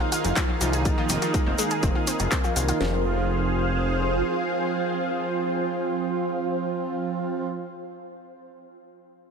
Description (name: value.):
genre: melodic techno.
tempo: 123 BPM.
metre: 4/4.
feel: straight.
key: F phrygian.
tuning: A4 = 442 Hz.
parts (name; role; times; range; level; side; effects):
lush unison pad; sustained chords; 0.0-7.5 s; Gb3 to F5; -32 LUFS; right 1 dB; chorus, phaser, sidechain pumping.
analog pluck; arpeggios; 0.0-3.0 s; F3 to Ab5; -30 LUFS; left 1 dB; chorus, sidechain pumping, ping-pong delay.
brassy analog pad; stabs; 0.0-7.5 s; Eb3 to F4; -29 LUFS; right 5 dB; chorus, sidechain pumping, ping-pong delay.
granular cloud pad; texture; 0.0-7.5 s; Eb4 to F5; -31 LUFS; left 1 dB; built-in reverb, sidechain pumping.
house drum kit; drums; 0.1-2.8 s; handclaps, hi-hat; -30 LUFS; right 1 dB; overdrive.
tube shaker; percussion; 0.1-2.8 s; none; -33 LUFS; left 6 dB; none.
fat analog bass; bass; 0.2-4.2 s; F1 to C2; -26 LUFS; left 1 dB; tube saturation, sidechain pumping.
house drum kit; drums; 0.4-2.9 s; kick drum, snare drum; -26 LUFS; left 1 dB; overdrive.
room: light reverb, digital ambience.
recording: none.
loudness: -22 LUFS.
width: side -6 dB against mid.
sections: 0.0-2.8 A section; 2.8-6.7 B section.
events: drop 0.0-2.8.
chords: 0.0 Ebmadd9/F; 2.8 Fm.